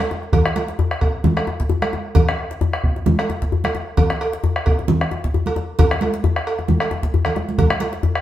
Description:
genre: west african traditional, West African drum ensemble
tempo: 132 BPM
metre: 4/4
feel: swing 55% on 16ths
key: none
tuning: none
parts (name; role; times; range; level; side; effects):
- cowbell; percussion; 0.0-7.9 s; none; -25 LUFS; right 3 dB; none
- djembe; percussion; 0.1-8.1 s; none; -22 LUFS; left 3 dB; none
- bombo; percussion; 0.2-8.2 s; none; -21 LUFS; equal; none
- congas; percussion; 0.3-7.9 s; none; -22 LUFS; right 3 dB; none
room: wet stone room reverb, RT60 0.9 s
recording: band playing live in one room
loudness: -17 LUFS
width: side -13 dB against mid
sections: 0.3-8.2 A section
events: drum fill 7.2-7.6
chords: none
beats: | 0.33 0.79 1.25 1.70 | 2.16 2.61 3.07 3.52 | 3.98 4.43 4.88 5.33 | 5.78 6.24 6.68 7.13 | 7.58 8.03

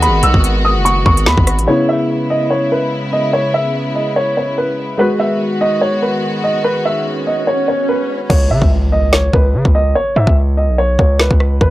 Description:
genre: hip hop, drill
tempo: 145 BPM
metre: 4/4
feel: half-time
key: C# minor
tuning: A4 = 439 Hz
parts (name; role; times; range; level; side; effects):
- dark upright piano; melody; 0.0-11.7 s; B4 to E6; -16 LUFS; equal; low-pass filter
- felt-muted upright piano; accompaniment; 0.0-8.3 s; C#3 to B4; -21 LUFS; equal; low-pass filter
- warm studio string section; sustained chords; 0.0-8.3 s; C#3 to F#4; -20 LUFS; left 1 dB; none
- distorted 808-style bass; bass; 0.0-1.7, 8.3-11.7 s; F#1 to C#3; -14 LUFS; equal; distortion
- drill drum kit; drums; 0.0-1.7, 8.3-11.7 s; crash cymbal, hi-hat, kick drum, rim click, snare drum; -13 LUFS; equal; none
- swell and impact; sound effects; 7.0-10.0 s; none; -22 LUFS; right 1 dB; none
room: little or no reverb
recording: dry, gritty hardware recording, transformer saturation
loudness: -12 LUFS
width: side -16 dB against mid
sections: 0.0-1.7 A section; 1.7-8.3 B section; 8.3-11.7 C section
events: swell 7.0-8.3; hi-hats muted 8.3-11.7; impact 8.3-10.0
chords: 0.0 G#m7; 1.7 C#m7; 5.0 G#m7; 8.3 C#5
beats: | 0.02 0.44 0.85 1.27 | 1.68 2.09 2.51 2.92 | 3.33 3.75 4.16 4.58 | 4.99 5.40 5.82 6.23 | 6.64 7.06 7.47 7.89 | 8.30 8.71 9.13 9.54 | 9.96 10.37 10.78 11.20 | 11.61

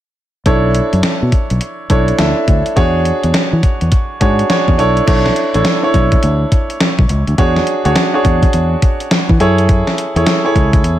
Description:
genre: R&B, new jack swing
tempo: 104 BPM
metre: 4/4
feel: swing 63% on 16ths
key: B dorian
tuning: A4 = 440 Hz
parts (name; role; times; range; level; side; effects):
- clear concert grand piano; accompaniment; 0.5-11.0 s; D4 to E5; -15 LUFS; right 1 dB; none
- fingered electric bass; bass; 0.5-11.0 s; A1 to E3; -15 LUFS; equal; none
- gated 80s digital drum machine; drums; 0.5-11.0 s; crash cymbal, hi-hat, kick drum, snare drum; -14 LUFS; equal; gated reverb, gated reverb snare, overdrive, vintage 12-bit sampler grit
room: little or no reverb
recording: none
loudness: -11 LUFS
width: side -12 dB against mid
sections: 0.5-5.1 A section; 5.1-11.0 B section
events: none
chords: 0.5 Bm11; 2.8 E13; 4.8 Bm11; 7.4 E13; 9.4 F#m9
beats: | 0.46 1.04 1.61 2.19 | 2.77 3.34 3.92 4.50 | 5.08 5.65 6.23 6.80 | 7.38 7.96 8.54 9.11 | 9.69 10.27 10.84

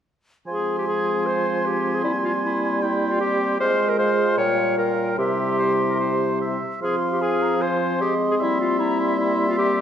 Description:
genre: classical, dramatic, fast romantic movement for symphony orchestra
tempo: 152 BPM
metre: 4/4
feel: straight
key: F minor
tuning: A4 = 440 Hz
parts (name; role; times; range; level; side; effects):
- bright clarinet; second line; 0.5-9.8 s; E4 to Db5; -24 LUFS; left 1 dB; none
- bright silver concert flute; second line; 0.5-9.8 s; G5 to C6; -28 LUFS; right 1 dB; none
- clear oboe; second line; 0.5-9.8 s; Bb4 to Ab5; -30 LUFS; right 2 dB; none
- mellow bassoon; accompaniment; 0.5-9.8 s; Bb2 to Ab3; -25 LUFS; right 3 dB; none
- warm French horn section; sustained chords; 0.5-9.8 s; F3 to F4; -28 LUFS; left 5 dB; none
room: wet scoring stage reverb, RT60 1.5 s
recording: dark, warm production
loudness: -19 LUFS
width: side -9 dB against mid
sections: 0.5-9.8 A section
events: none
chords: 0.5 Fm; 2.0 C7/G; 3.6 Fm/Ab; 4.4 Gm7b5/Bb; 5.2 C; 6.8 Fm; 8.4 C7/G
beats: | 0.47 0.86 1.26 1.65 | 2.04 2.43 2.82 3.21 | 3.60 3.99 4.38 4.78 | 5.18 5.59 6.00 6.41 | 6.82 7.22 7.62 8.01 | 8.41 8.80 9.20 9.59

